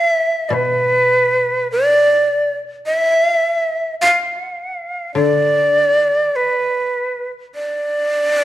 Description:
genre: japanese traditional, Japanese chamber music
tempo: 51 BPM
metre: 4/4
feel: rubato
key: unclear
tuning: A4 = 440 Hz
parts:
  - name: breathy bright shakuhachi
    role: melody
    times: 0.0-8.4 s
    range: B4 to F5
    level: -14 LUFS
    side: right 1 dB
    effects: none
  - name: koto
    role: accompaniment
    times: 0.0-8.4 s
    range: B2 to D3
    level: -22 LUFS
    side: left 6 dB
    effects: none
room: moderate recital hall reverb, RT60 1.5 s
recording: dark, warm production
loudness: -14 LUFS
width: side -13 dB against mid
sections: 0.0-8.4 A section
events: none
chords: none

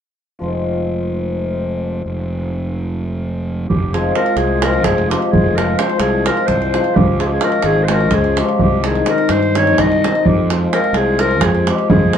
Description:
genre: balkan folk, Balkan wedding band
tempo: 256 BPM (eighths)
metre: 7/8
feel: straight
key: F minor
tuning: A4 = 440 Hz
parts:
  - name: cimbalom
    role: accompaniment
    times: 0.4-12.2 s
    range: Eb3 to F4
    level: -18 LUFS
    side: left 3 dB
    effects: none
  - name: fuzz fingered electric bass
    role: bass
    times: 0.4-12.2 s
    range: F1 to G2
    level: -20 LUFS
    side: right 1 dB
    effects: overdrive
  - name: mellow clarinet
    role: melody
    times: 3.7-12.2 s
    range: G4 to Eb5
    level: -19 LUFS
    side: equal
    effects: none
  - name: davul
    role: percussion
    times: 3.7-12.2 s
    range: none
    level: -18 LUFS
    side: right 2 dB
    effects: none
room: moderate studio reverb, RT60 0.5 s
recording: band playing live in one room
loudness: -14 LUFS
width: side -8 dB against mid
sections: 0.4-3.7 A section; 3.7-12.2 B section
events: none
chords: 0.4 Fm; 7.0 Db; 8.6 Cm; 10.3 Fm

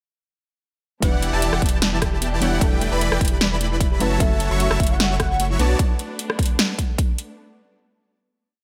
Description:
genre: future bass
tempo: 151 BPM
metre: 4/4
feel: swing 54% on 16ths, half-time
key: B minor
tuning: A4 = 441 Hz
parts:
  - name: soft round pluck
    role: accompaniment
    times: 1.0-5.8 s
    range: F#3 to C#5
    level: -30 LUFS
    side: equal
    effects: chorus, sidechain pumping, delay
  - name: dark studio string section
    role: sustained chords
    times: 1.0-7.4 s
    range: E3 to A4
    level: -37 LUFS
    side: equal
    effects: none
  - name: airy dreamy lead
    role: arpeggios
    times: 1.0-5.8 s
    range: F#5 to C#6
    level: -35 LUFS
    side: equal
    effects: chorus, sidechain pumping
  - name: thumb-piano-like synth pluck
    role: arpeggios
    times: 1.0-5.8 s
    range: A3 to E5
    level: -36 LUFS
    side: equal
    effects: none
  - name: supersaw chords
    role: riff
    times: 1.0-5.8 s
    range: E3 to C#6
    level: -28 LUFS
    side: equal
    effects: sidechain pumping, delay
  - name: saturated sub bass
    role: bass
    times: 1.0-5.8 s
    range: E1 to B1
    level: -26 LUFS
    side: equal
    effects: sidechain pumping
  - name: big-room dance drum kit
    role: drums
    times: 1.0-7.3 s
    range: hi-hat, rim click, snare drum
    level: -25 LUFS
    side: equal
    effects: none
  - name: electronic kick drum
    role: drums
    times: 1.0-7.1 s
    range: none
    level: -22 LUFS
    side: equal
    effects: none
  - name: warm velvety synth lead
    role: melody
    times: 4.2-5.4 s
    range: E5 to F#5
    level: -30 LUFS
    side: equal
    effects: chorus, sidechain pumping, delay
room: light reverb, digital ambience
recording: none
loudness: -20 LUFS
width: mono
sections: 1.0-7.4 drop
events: drop 1.0-7.4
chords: 1.0 Em7; 2.6 A7sus4/E; 4.0 F#m7; 5.6 Bm7

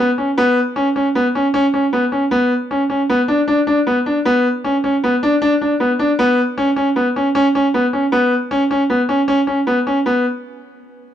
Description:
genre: progressive instrumental, progressive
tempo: 155 BPM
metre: 5/4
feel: straight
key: B minor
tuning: A4 = 440 Hz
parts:
  - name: bright concert grand piano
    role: solo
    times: 0.0-10.2 s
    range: B3 to D4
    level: -14 LUFS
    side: equal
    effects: none
room: light reverb, studio ambience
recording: dry, close 1970s-style studio recording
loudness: -14 LUFS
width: side -10 dB against mid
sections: 0.0-10.1 A section; 10.1-11.1 B section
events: none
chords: none

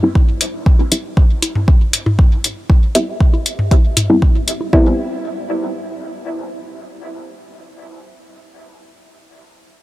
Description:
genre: dub techno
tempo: 118 BPM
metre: 4/4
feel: straight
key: unclear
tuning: A4 = 440 Hz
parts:
  - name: filtered dub chord stab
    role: stabs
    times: 0.0-8.0 s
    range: G3 to E4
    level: -20 LUFS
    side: equal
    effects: chorus, phaser, sidechain pumping, dub echo
  - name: electronic kick drum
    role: drums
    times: 0.2-4.8 s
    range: none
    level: -11 LUFS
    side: equal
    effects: none
  - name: electronic bongos and toms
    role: percussion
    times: 0.2-4.7 s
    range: none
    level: -21 LUFS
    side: left 1 dB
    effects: sidechain pumping on perc, sidechain pumping on toms, dub echo
  - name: electronic hi-hat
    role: drums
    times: 0.4-4.6 s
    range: none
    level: -16 LUFS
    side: left 2 dB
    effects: none
room: light reverb, digital ambience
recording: none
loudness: -12 LUFS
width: side -17 dB against mid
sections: 0.0-4.7 A section; 4.7-8.8 B section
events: filter sweep on synth stab 0.0-4.7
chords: 0.0 Am7 (rootless)

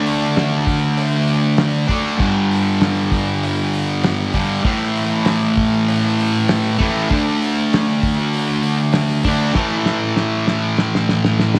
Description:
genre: garage rock duo or trio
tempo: 98 BPM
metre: 4/4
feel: straight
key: unclear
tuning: A4 = 440 Hz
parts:
  - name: thick fuzz guitar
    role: riff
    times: 0.0-11.6 s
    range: G2 to D4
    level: -19 LUFS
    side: equal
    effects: distortion
  - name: cloth-damped thuddy drum kit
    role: drums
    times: 0.1-11.6 s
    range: crash cymbal, hi-hat, kick drum, snare drum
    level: -24 LUFS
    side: equal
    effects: vintage 12-bit sampler grit
room: moderate echo chamber reverb, RT60 1.5 s, studio ambience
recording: none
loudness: -18 LUFS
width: mono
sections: 0.0-11.6 A section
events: drum fill 9.6-11.6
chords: 0.0 D5; 2.2 G5; 4.6 A5; 7.1 D5; 9.6 A5

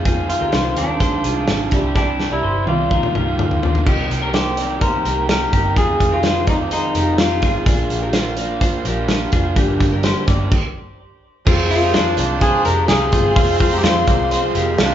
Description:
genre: jangly indie pop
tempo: 126 BPM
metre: 4/4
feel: straight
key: F dorian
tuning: A4 = 436 Hz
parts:
  - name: raw garage guitar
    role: accompaniment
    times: 0.0-14.9 s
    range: F2 to D5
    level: -24 LUFS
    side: right 3 dB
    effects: overdrive
  - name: twelve-string electric guitar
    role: arpeggios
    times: 0.0-14.9 s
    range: D4 to D5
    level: -24 LUFS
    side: left 3 dB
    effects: ping-pong delay
  - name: vintage muted picked electric bass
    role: bass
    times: 0.0-14.9 s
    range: F1 to F2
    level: -23 LUFS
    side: equal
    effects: none
  - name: loose indie drum kit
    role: drums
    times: 0.1-14.9 s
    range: crash cymbal, hi-hat, kick drum, snare drum, toms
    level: -19 LUFS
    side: equal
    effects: none
  - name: electric guitar through a small old amp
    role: melody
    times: 0.3-7.5, 11.7-14.9 s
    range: D4 to Bb4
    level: -20 LUFS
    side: left 1 dB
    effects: none
  - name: brilliant trumpet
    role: second line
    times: 11.5-14.9 s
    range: C4 to D4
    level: -26 LUFS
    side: right 3 dB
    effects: none
  - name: phased analog pad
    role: sustained chords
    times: 11.5-14.9 s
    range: Ab3 to C6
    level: -25 LUFS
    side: equal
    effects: phaser, chorus
room: wet large studio reverb, RT60 0.9 s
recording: band playing live in one room, nothing above 7.6 kHz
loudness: -15 LUFS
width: side -10 dB against mid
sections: 0.0-3.9 A section; 3.9-11.5 B section; 11.5-14.9 C section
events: drum fill 2.0-3.9; stop 10.5-11.5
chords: 0.0 Fm7; 1.7 Cadd9; 2.9 Ebsus2; 3.9 Cm7; 5.8 Fm7; 7.7 Bb; 9.6 Gm7; 11.5 Fm

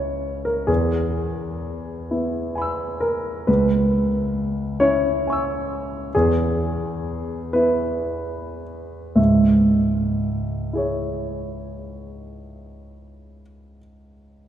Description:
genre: neoclassical minimalist piano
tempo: 34-46 BPM (dotted quarters)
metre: 6/8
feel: rubato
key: C# minor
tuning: A4 = 441 Hz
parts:
  - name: warm grand piano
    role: solo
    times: 0.0-14.5 s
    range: C#2 to E6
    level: -20 LUFS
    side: equal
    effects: none
room: wet church reverb, RT60 3.7 s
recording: recorded in a church or concert hall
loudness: -19 LUFS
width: side -10 dB against mid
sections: 0.0-3.5 A section; 3.5-9.2 B section; 9.2-12.3 C section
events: slowing down 2.1-9.2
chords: 0.0 C#m; 0.7 E; 3.5 C#m; 6.1 E; 9.2 C#m

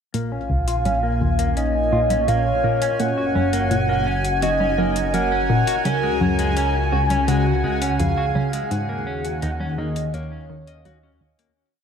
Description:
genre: ambient, sequencer-driven space music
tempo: 84 BPM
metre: 4/4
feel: straight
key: Bb minor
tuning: A4 = 440 Hz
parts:
  - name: soft octave-layered synth lead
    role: melody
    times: 0.1-11.2 s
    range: Db5 to Ab5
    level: -24 LUFS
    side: equal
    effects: chorus, phaser, tape echo
  - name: evolving wavetable pad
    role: sustained chords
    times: 0.1-11.6 s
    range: Bb2 to Ab5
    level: -25 LUFS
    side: left 1 dB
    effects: chorus, built-in reverb, phaser
  - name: clean electric guitar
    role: arpeggios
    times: 0.1-11.5 s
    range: Ab3 to Eb5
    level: -30 LUFS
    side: moving between left 7 dB and right 2 dB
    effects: auto-pan, low-pass filter, tape echo
  - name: tight sequenced synth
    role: riff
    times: 0.1-11.4 s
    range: Db2 to Eb3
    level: -25 LUFS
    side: equal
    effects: chorus, tape echo
  - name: fat analog bass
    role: bass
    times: 0.1-11.5 s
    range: Gb1 to Eb2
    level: -26 LUFS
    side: equal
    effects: tube saturation
  - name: electronic hi-hat and congas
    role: percussion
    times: 0.1-11.5 s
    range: none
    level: -31 LUFS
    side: left 1 dB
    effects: tape echo
  - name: bubbling stepped-filter texture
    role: texture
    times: 0.6-11.6 s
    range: Ab5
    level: -31 LUFS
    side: right 4 dB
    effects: chorus, built-in reverb
room: moderate plate reverb, RT60 2.4 s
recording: none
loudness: -18 LUFS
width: side -7 dB against mid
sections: 0.1-11.6 A section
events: filter sweep on clean electric guitar 0.1-11.6; fade-out 7.8-11.6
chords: 0.1 Bbm; 3.0 Gb; 5.9 Dbsus4; 8.7 Ebm7

